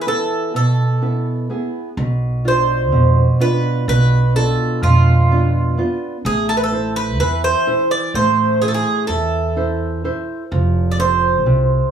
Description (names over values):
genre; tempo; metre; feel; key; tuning
greek folk, Greek bouzouki band; 126 BPM (eighths); 9/8; straight; unclear; A4 = 440 Hz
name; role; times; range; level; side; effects
Greek bouzouki; melody; 0.0-11.9 s; F4 to D5; -19 LUFS; right 2 dB; none
nylon-string guitar; accompaniment; 0.0-11.9 s; B2 to C5; -18 LUFS; right 2 dB; none
upright bass; bass; 2.0-11.8 s; F1 to F2; -19 LUFS; right 1 dB; none
room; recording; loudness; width
light reverb; small room ambience; -15 LUFS; side -8 dB against mid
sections
0.0-2.0 A section; 2.0-11.9 B section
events
none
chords
0.0 E; 2.0 Bdim; 6.3 Am; 10.5 F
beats
0.07 0.55 1.02 1.50 | 1.98 2.45 2.93 3.40 3.88 4.35 4.83 5.30 5.78 | 6.25 6.73 7.20 7.67 8.15 8.62 9.10 9.57 10.04 | 10.52 10.99 11.46